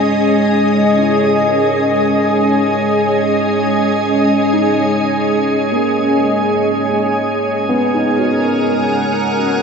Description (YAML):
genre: ambient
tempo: 76 BPM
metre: 4/4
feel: straight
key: C# dorian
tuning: A4 = 441 Hz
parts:
  - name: soft additive organ-like pad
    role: sustained chords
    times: 0.0-9.6 s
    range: G#3 to F#5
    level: -13 LUFS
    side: equal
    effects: ensemble chorus, built-in reverb
  - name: felt-muted upright piano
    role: arpeggios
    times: 0.0-9.6 s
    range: A#3 to A#4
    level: -22 LUFS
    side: left 1 dB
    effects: analog delay
  - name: drifting glass-harmonics texture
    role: texture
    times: 0.0-9.6 s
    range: G#4 to G#5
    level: -25 LUFS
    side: right 2 dB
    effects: chorus, built-in reverb
room: wet plate reverb, RT60 3.9 s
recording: echo-heavy mix, cassette tape, nothing above 7.8 kHz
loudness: -12 LUFS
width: side -5 dB against mid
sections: 0.0-9.6 A section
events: fade-in on felt piano 0.0-9.6; fade-in on synth texture 0.0-9.6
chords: 0.0 C#m; 6.5 G#m7